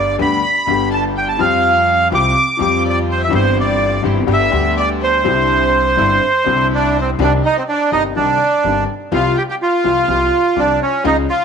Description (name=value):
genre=tango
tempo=125 BPM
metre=4/4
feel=rubato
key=C major, C minor from 7.2 s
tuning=A4 = 438 Hz
part: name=bandoneon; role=melody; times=0.0-11.4 s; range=C4 to D6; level=-15 LUFS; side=right 3 dB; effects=slapback echo
part: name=clear chamber violin section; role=second line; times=0.0-11.4 s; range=C5 to D6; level=-26 LUFS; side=left 12 dB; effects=none
part: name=warm upright piano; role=accompaniment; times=0.0-11.2 s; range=G1 to G4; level=-20 LUFS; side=left 13 dB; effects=none
part: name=dark chamber string section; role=stabs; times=0.0-11.2 s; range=B3 to Ab4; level=-25 LUFS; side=right 11 dB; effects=none
part: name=upright bass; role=bass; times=0.0-11.2 s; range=G1 to F2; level=-22 LUFS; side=right 1 dB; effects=none
room=light reverb, studio reverb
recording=1960s-style stereo with parts hard left and right, tape saturation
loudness=-13 LUFS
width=side -6 dB against mid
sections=0.0-7.2 A section; 7.2-11.4 B section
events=none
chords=0.0 G; 1.4 Fsus2; 3.3 C/G; 4.3 G; 5.2 Cadd9; 7.2 Cmadd9; 9.1 Fsus2/C